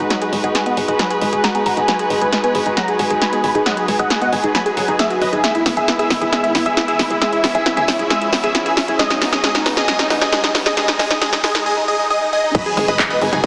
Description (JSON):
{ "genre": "uplifting trance", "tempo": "135 BPM", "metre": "4/4", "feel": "straight", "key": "G# minor", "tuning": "A4 = 440 Hz", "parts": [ { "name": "big supersaw lead", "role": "melody", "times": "0.0-13.5 s", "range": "D#4 to B5", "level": "-20 LUFS", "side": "equal", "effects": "phaser, sidechain pumping, low-pass filter" }, { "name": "rich studio string section", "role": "sustained chords", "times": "0.0-13.5 s", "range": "G#3 to B4", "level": "-26 LUFS", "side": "equal", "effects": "sidechain pumping" }, { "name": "unison pluck", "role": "arpeggios", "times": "0.0-13.5 s", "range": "F#3 to E5", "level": "-27 LUFS", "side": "equal", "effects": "sidechain pumping, tape echo" }, { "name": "tight sequencer bass", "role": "bass", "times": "0.0-13.4 s", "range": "G#1", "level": "-29 LUFS", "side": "equal", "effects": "sidechain pumping" }, { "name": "riser and impact", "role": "sound effects", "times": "0.3-13.5 s", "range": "none", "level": "-35 LUFS", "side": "equal", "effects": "none" }, { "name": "big-room dance drum kit", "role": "drums", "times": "0.1-13.5 s", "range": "crash cymbal, handclaps, hi-hat, snare drum, toms", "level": "-22 LUFS", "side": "equal", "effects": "small room ambience, sidechain pumping on hats, sidechain pumping on toms, sidechain pumping on cymbals" }, { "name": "electronic kick drum", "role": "drums", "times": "12.5-13.5 s", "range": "none", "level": "-21 LUFS", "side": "equal", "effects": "small room ambience" } ], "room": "moderate huge ambient reverb, RT60 7.3 s", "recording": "heavily compressed radio sound, multiband compression, high-pass filter, small speaker sound", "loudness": "-17 LUFS", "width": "mono", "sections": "0.0-12.5 A section", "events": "build-up 0.0-12.5; drum fill 0.0-11.7; filter sweep on supersaw synth 0.0-12.5; filter sweep on synth pluck 0.0-12.5; filter sweep 0.0-12.5; impact 12.5-13.5", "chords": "0.0 G#m7; 5.4 E/G#; 9.0 Badd9/G#; 12.5 G#m7", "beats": "| 0.10 0.55 0.99 1.44 | 1.88 2.33 2.77 3.21 | 3.66 4.10 4.55 4.99 | 5.44 5.88 6.33 6.77 | 7.21 7.66 8.10 8.55 | 8.99 9.44 9.88 10.33 | 10.77 11.21 11.66 12.10 | 12.55 12.99 13.44" }